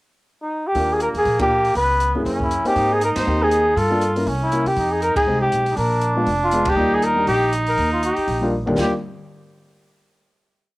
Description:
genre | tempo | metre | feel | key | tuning
jazz, small-group swing and bop | 239 BPM | 4/4 | swing 57% on 8ths | Eb major | A4 = 439 Hz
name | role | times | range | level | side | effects
warm flugelhorn | melody | 0.4-8.9 s | Eb4 to C5 | -19 LUFS | equal | none
mellow trumpet | second line | 0.7-8.9 s | Bb3 to G4 | -25 LUFS | right 2 dB | cassette tape
upright bass | bass | 0.7-8.9 s | F1 to C3 | -25 LUFS | equal | none
open jazz drum kit | drums | 0.7-8.8 s | crash cymbal, hi-hat, kick drum, ride cymbal, snare drum, toms | -31 LUFS | equal | cassette tape
dark grand piano | accompaniment | 0.8-8.9 s | Eb2 to D5 | -24 LUFS | left 1 dB | cassette tape
room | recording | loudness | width
small room ambience | home recording on cassette | -17 LUFS | side -20 dB against mid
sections
0.0-0.8 pickup bar; 0.8-8.8 A section; 8.8-9.8 final chord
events
band accent 1.4, 3.1, 5.1, 6.7; drum fill 8.5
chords
0.0 N.C.; 0.8 Ebmaj7; 1.8 Dbm7; 2.3 Gb9; 2.8 Abmaj7; 3.8 Gm9; 4.3 C7b9; 4.8 Fm7; 5.8 Bb7b9; 6.8 Ebmaj7

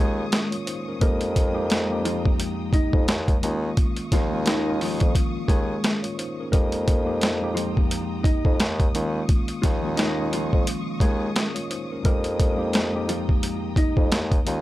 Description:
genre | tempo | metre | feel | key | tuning
hip hop, boom-bap hip-hop | 87 BPM | 4/4 | swing 58% on 16ths | F minor | A4 = 442 Hz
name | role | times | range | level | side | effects
mellow electric guitar | melody | 0.0-14.1 s | F3 to Eb5 | -30 LUFS | left 1 dB | tape echo
mellow tine electric piano | accompaniment | 0.0-14.6 s | F2 to Db5 | -29 LUFS | equal | medium stereo tremolo
warm studio string section | sustained chords | 0.0-14.6 s | Ab3 to Eb6 | -37 LUFS | left 2 dB | none
warm bassoon | bass | 0.0-14.6 s | Eb2 to F2 | -27 LUFS | equal | none
boom bap sampler-style drum kit | drums | 0.3-14.6 s | hi-hat, kick drum, snare drum | -22 LUFS | equal | none
room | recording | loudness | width
little or no reverb | dry, gritty hardware recording | -21 LUFS | side -16 dB against mid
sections
0.0-14.6 A section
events
none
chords
0.0 Eb9sus4; 1.0 Fm11; 3.4 Eb9sus4; 6.5 Fm11; 8.9 Eb9sus4; 12.0 Fm11

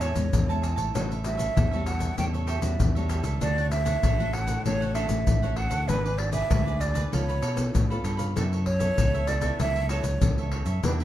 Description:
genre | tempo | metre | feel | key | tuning
samba and choro | 97 BPM | 4/4 | straight | unclear | A4 = 439 Hz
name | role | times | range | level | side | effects
breathy concert flute | melody | 0.0-10.9 s | A4 to G5 | -30 LUFS | right 2 dB | none
cavaquinho | accompaniment | 0.0-11.0 s | D4 to B5 | -36 LUFS | right 4 dB | none
nylon-string guitar | accompaniment | 0.0-11.0 s | A2 to B4 | -35 LUFS | left 4 dB | none
fingered electric bass | bass | 0.0-11.0 s | G#1 to B2 | -28 LUFS | equal | none
tube shaker, pandeiro and surdo | percussion | 0.0-11.0 s | none | -28 LUFS | left 1 dB | none
room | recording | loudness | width
light reverb | dark, warm production | -23 LUFS | side -13 dB against mid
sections
0.0-11.0 A section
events
none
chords
0.0 Amaj7; 1.0 A6; 3.4 Dmaj7; 5.9 G#m7b5; 7.1 C#aug7; 8.4 F#m7

